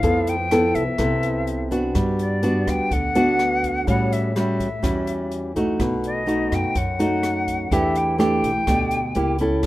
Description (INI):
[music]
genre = bossa nova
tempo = 125 BPM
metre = 4/4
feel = straight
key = unclear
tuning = A4 = 440 Hz
[part]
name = jazz flute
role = melody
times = 0.0-9.4 s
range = D5 to G5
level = -25 LUFS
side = left 2 dB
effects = none
[part]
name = nylon-string guitar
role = accompaniment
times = 0.0-9.7 s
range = F#2 to A4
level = -21 LUFS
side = equal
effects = none
[part]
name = upright bass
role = bass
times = 0.0-9.7 s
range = B1 to A2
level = -28 LUFS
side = equal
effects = none
[part]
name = open jazz drum kit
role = drums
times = 0.0-9.7 s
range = hi-hat, kick drum, rim click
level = -30 LUFS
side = equal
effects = none
[sound]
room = light reverb, small room ambience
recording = rough home demo mix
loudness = -19 LUFS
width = side -16 dB against mid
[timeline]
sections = 0.0-9.7 A section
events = none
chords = 0.0 Fmaj9#11; 2.0 Gmaj7; 3.9 A6; 5.8 B7; 7.7 Em7; 9.2 C#dim7